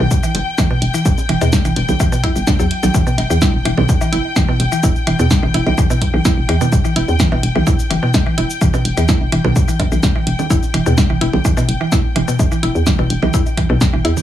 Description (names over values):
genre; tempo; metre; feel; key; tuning
minimal techno; 127 BPM; 4/4; straight; E minor; A4 = 439 Hz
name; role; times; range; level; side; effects
mallet-like synth pluck; riff; 0.0-14.1 s; B2 to E4; -19 LUFS; equal; chorus, sidechain pumping, tape echo
hollow knocking FM bass; bass; 0.0-14.1 s; E1 to E2; -17 LUFS; equal; sidechain pumping
congas, bongos and cowbell; percussion; 0.0-14.2 s; none; -25 LUFS; right 3 dB; digital delay
warm studio string section; texture; 0.0-14.2 s; G5; -25 LUFS; left 4 dB; sidechain pumping
electronic kick drum; drums; 0.1-13.9 s; none; -16 LUFS; equal; none
punchy analog drum machine; drums; 0.1-14.2 s; hi-hat, shaker, snare drum; -21 LUFS; equal; none
room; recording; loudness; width
little or no reverb; none; -13 LUFS; side -12 dB against mid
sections
0.0-14.2 A section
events
none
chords
0.0 Em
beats
0.11 0.58 | 1.05 1.53 2.00 2.47 | 2.94 3.42 3.89 4.36 | 4.83 5.31 5.78 6.25 | 6.72 7.20 7.67 8.14 | 8.61 9.09 9.56 10.03 | 10.50 10.98 11.45 11.92 | 12.39 12.87 13.34 13.81